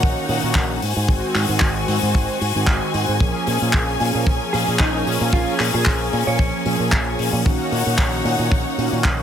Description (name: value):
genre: nu-disco, nu disco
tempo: 113 BPM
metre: 4/4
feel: swing 54% on 16ths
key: Bb minor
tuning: A4 = 440 Hz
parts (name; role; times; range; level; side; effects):
- mellow synth brass; accompaniment; 0.0-9.2 s; Eb3 to Ab4; -24 LUFS; right 1 dB; chorus, sidechain pumping, ping-pong delay
- rich symphonic string section; sustained chords; 0.0-9.2 s; Db4 to Ab5; -25 LUFS; left 2 dB; vintage 12-bit sampler grit, sidechain pumping
- fingered electric bass with an envelope filter; bass; 0.0-9.2 s; Ab1 to Bb2; -23 LUFS; equal; none
- kick drum; drums; 0.0-9.2 s; none; -19 LUFS; equal; none
- tight funk drum kit; drums; 0.3-9.2 s; handclaps, hi-hat; -24 LUFS; left 2 dB; none
- mellow electric guitar; melody; 4.5-6.8 s; Eb4 to Db5; -27 LUFS; right 1 dB; digital delay
room: studio ambience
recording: none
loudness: -17 LUFS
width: side -9 dB against mid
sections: 0.0-9.2 A section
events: none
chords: 0.0 Ebm7/Bb; 0.8 Ab7; 3.2 Bbm7; 7.5 Ebm7/Bb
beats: 0.02 0.55 | 1.08 1.61 2.15 2.68 | 3.21 3.74 4.27 4.80 | 5.33 5.86 6.39 6.92 | 7.46 7.99 8.52 9.05